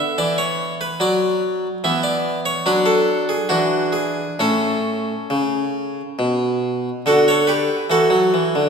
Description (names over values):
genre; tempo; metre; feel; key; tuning
classical, baroque-style suite movement for harpsichord; 66-74 BPM; 3/4; rubato; A major; A4 = 441 Hz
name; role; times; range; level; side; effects
harpsichord; solo; 0.0-8.7 s; A2 to E5; -17 LUFS; equal; none
room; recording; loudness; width
wet scoring stage reverb, RT60 2.0 s; recorded in a church or concert hall; -17 LUFS; side -6 dB against mid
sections
0.0-7.1 A section; 7.1-8.7 A section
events
none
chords
0.0 Bm; 1.8 E5; 2.7 D/F#; 3.5 E7; 4.4 A; 7.1 D